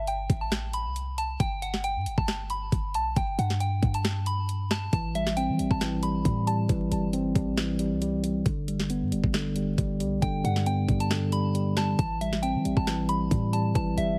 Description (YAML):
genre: hip hop, trap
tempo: 136 BPM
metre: 4/4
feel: half-time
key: A minor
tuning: A4 = 441 Hz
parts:
  - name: soft synth bell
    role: melody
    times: 0.0-6.7, 10.2-14.2 s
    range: E5 to B5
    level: -34 LUFS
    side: equal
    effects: chorus, phaser, digital delay
  - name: clean 808-style bass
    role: bass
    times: 0.0-14.2 s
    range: G1 to E3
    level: -33 LUFS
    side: equal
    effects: none
  - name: trap drum kit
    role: drums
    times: 0.1-14.1 s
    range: hi-hat, kick drum, snare drum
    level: -32 LUFS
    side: equal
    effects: none
  - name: mellow tine electric piano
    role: accompaniment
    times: 4.9-14.2 s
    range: D3 to C4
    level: -30 LUFS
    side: equal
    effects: none
room: little or no reverb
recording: heavily compressed radio sound, vinyl crackle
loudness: -27 LUFS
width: mono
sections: 0.0-14.2 A section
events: none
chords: 0.0 Am7; 1.4 G; 4.9 Am7; 8.5 G; 12.0 Am7